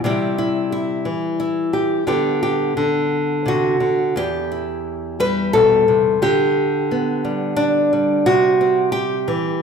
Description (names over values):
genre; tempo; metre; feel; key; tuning
folk, solo fingerstyle acoustic guitar; 88 BPM; 3/4; rubato; G major; A4 = 439 Hz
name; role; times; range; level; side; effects
nylon-string guitar; solo; 0.0-9.6 s; E2 to B4; -16 LUFS; equal; none
room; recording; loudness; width
moderate recital hall reverb, RT60 1.4 s; recorded in a church or concert hall; -16 LUFS; side -6 dB against mid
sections
0.0-9.6 A section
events
none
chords
0.0 C; 2.1 G/D; 2.8 D6; 4.2 Em; 6.2 G/D; 8.3 C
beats
| 0.04 0.71 1.39 | 2.07 2.76 3.46 | 4.16 4.85 5.54 | 6.22 6.90 7.58 | 8.26 8.93 9.60